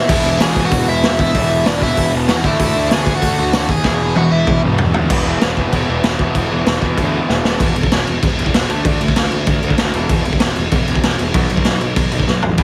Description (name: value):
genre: punk rock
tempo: 192 BPM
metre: 4/4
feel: straight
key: E mixolydian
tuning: A4 = 440 Hz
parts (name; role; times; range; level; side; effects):
- smooth overdriven lead guitar; melody; 0.0-4.6 s; D4 to G#5; -21 LUFS; equal; none
- fuzz picked electric bass; bass; 0.0-12.6 s; E1 to E2; -23 LUFS; equal; overdrive
- crunchy overdriven guitar; riff; 0.1-12.6 s; E2 to D4; -24 LUFS; equal; none
- tight distorted guitar; riff; 0.1-7.6, 12.6 s; D3 to F#4; -27 LUFS; equal; distortion
- raw garage drum kit; drums; 0.1-12.6 s; crash cymbal, hi-hat, kick drum, snare drum, toms; -18 LUFS; equal; none
room: little or no reverb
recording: heavily compressed radio sound, multiband compression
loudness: -16 LUFS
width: mono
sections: 0.0-5.1 A section; 5.1-7.6 B section; 7.6-12.6 C section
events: drum fill 3.8-5.1, 7.3-7.6, 12.3-12.6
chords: 0.1 E; 2.4 D; 3.8 E; 7.6 E5; 8.7 D5; 9.9 E5; 11.3 B5